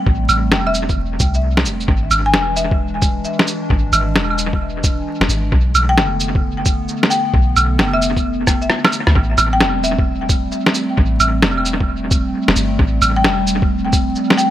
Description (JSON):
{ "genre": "future garage", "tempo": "132 BPM", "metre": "4/4", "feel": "swing 65% on 16ths", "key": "A minor", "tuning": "A4 = 436 Hz", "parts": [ { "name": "marimba with medium hard mallets", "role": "melody", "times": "0.0-2.9, 5.9-10.2, 13.2-14.5 s", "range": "E5 to G#5", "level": "-22 LUFS", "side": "left 3 dB", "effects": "tape echo" }, { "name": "warbly tape-like pad", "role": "sustained chords", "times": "0.0-14.5 s", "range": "D3 to D4", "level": "-22 LUFS", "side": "right 1 dB", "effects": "chorus, built-in reverb, sidechain pumping" }, { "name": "soft 808-style bass", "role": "bass", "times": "0.1-14.1 s", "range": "E1 to D2", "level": "-20 LUFS", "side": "equal", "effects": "none" }, { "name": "electronic kick drum", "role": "drums", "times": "0.1-14.0 s", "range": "none", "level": "-17 LUFS", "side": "equal", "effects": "overdrive" }, { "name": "electronic cabasa, shaker, claves, snare drum and rim click", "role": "drums", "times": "0.3-14.5 s", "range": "none", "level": "-17 LUFS", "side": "right 1 dB", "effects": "overdrive, dub echo" } ], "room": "light reverb, digital ambience", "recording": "echo-heavy mix, vinyl crackle", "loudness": "-14 LUFS", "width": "side -12 dB against mid", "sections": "0.0-14.5 A section", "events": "drum fill 8.5-9.2", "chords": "0.0 Am7; 1.9 E7; 5.5 Bm7b5; 9.2 Am7" }